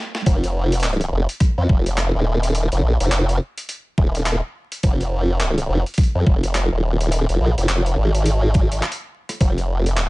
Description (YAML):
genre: glitch hop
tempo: 105 BPM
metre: 4/4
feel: swing 60% on 16ths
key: F minor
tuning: A4 = 441 Hz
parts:
  - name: boom bap sampler-style drum kit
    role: drums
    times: 0.1-10.1 s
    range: handclaps, hi-hat, rim click, snare drum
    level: -26 LUFS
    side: equal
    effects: overdrive, studio reverb
  - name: formant-sweep wobble bass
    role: bass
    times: 0.3-10.1 s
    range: Eb1 to F2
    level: -18 LUFS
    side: equal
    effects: chorus, high-pass filter
  - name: electronic kick drum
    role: drums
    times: 0.3-9.5 s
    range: none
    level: -16 LUFS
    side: equal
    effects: overdrive, high-pass filter on kick, studio reverb, high-pass filter on room
room: little or no reverb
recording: vinyl crackle, high-pass filter, nothing above 10.7 kHz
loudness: -17 LUFS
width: side -23 dB against mid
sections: 0.3-10.1 A section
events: drum fill 0.0; stop 0.0; drop 0.3-10.1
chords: none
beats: | 0.26 0.83 1.41 1.98 | 2.55 3.12 3.69 4.26 | 4.83 5.41 5.98 6.55 | 7.12 7.69 8.26 8.83 | 9.40 9.98